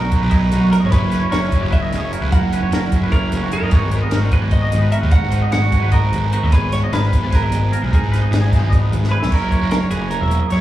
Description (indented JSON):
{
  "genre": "math rock and midwest emo",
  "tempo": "300 BPM (eighths)",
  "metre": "7/8",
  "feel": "straight",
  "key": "unclear",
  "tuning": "A4 = 440 Hz",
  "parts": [
    { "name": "clean electric guitar", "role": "melody", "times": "0.0-10.6 s", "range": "G#4 to F#5", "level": "-24 LUFS", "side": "right 1 dB", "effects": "spring reverb, slapback echo" },
    { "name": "twangy electric guitar", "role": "accompaniment", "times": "0.0-10.6 s", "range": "F#2 to G#4", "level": "-24 LUFS", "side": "right 5 dB", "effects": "none" },
    { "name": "twangy electric guitar", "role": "arpeggios", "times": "0.0-10.6 s", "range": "F#4 to E5", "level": "-28 LUFS", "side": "left 2 dB", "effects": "slapback echo" },
    { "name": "overdriven electric guitar", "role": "riff", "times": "0.0-9.3 s", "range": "F#2 to E4", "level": "-26 LUFS", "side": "equal", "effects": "none" },
    { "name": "fuzz picked electric bass", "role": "bass", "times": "0.0-10.6 s", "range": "E1 to F#2", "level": "-18 LUFS", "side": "equal", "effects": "overdrive" },
    { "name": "compact cocktail drum kit", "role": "drums", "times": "0.1-10.6 s", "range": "crash cymbal, hi-hat, kick drum, snare drum", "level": "-18 LUFS", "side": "equal", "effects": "none" }
  ],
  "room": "little or no reverb",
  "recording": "live gig heard through the venue's PA, club reverb, small room ambience",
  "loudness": "-14 LUFS",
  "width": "side -14 dB against mid",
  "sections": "0.0-9.3 A section; 9.3-10.6 B section",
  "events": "drum fill 9.0-9.3",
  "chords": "0.0 Bmaj7; 0.9 F#7sus4; 3.7 G#m7; 6.5 Emaj7/G#; 9.3 F#7"
}